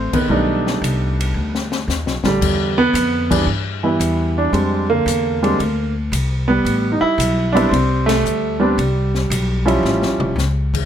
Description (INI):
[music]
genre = jazz piano trio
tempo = 113 BPM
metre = 4/4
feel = swing 69% on 8ths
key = A minor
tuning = A4 = 438 Hz
[part]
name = warm baby grand piano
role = melody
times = 0.0-10.3 s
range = D3 to E4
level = -17 LUFS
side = right 2 dB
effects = plate reverb
[part]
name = upright bass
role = bass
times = 0.0-10.9 s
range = E1 to G2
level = -21 LUFS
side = left 1 dB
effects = none
[part]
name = open jazz drum kit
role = drums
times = 0.1-10.8 s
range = crash cymbal, hi-hat, kick drum, ride cymbal, snare drum, toms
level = -25 LUFS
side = left 4 dB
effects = none
[sound]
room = light reverb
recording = none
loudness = -15 LUFS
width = side -9 dB against mid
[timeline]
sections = 0.0-10.9 A section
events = band accent 0.0, 3.2, 8.0; drum fill 1.3-2.4, 9.8-10.4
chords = 0.3 B7alt; 2.4 Em7; 4.5 Bb13; 6.6 Am9; 9.8 A7b13